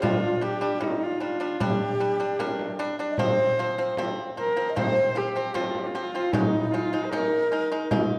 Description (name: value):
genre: mongolian traditional, Mongolian folk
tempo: 76 BPM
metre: 4/4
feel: straight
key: unclear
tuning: A4 = 445 Hz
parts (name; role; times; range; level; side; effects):
- rich horsehead fiddle; melody; 0.0-7.9 s; Eb4 to C5; -30 LUFS; equal; none
- breathy low xiao; second line; 0.0-7.9 s; Eb4 to Eb5; -33 LUFS; equal; slapback echo
- pipa; arpeggios; 0.0-8.2 s; F3 to Eb4; -32 LUFS; equal; none
- frame drum; percussion; 0.0-8.1 s; none; -32 LUFS; equal; none
room: wet recital hall reverb, RT60 1.7 s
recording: dark, warm production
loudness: -26 LUFS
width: mono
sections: 0.0-8.2 A section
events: none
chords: 0.0 G5; 3.2 F5; 6.3 Ab5